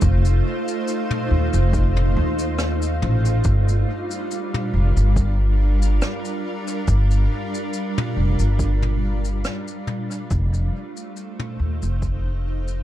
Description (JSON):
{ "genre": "ambient dub", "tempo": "70 BPM", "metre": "4/4", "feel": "swing 54% on 16ths", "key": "G minor", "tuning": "A4 = 440 Hz", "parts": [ { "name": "granular cloud pad", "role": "sustained chords", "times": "0.0-12.8 s", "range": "G3 to F5", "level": "-26 LUFS", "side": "right 1 dB", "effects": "built-in reverb" }, { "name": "upright bass", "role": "bass", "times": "0.0-12.8 s", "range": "F1 to Eb2", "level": "-19 LUFS", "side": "equal", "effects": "none" }, { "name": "electronic kick drum", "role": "drums", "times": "0.0-12.2 s", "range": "none", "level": "-24 LUFS", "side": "equal", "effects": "none" }, { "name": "jazz brush drum kit", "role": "drums", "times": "0.0-12.8 s", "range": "rim click, shaker, toms", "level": "-29 LUFS", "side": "equal", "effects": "dub echo" } ], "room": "little or no reverb", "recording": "dark, warm production", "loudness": "-19 LUFS", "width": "side -13 dB against mid", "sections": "0.0-12.8 A section", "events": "fade-out 8.0-12.8", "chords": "0.0 F7; 3.5 Gm7; 10.3 F7" }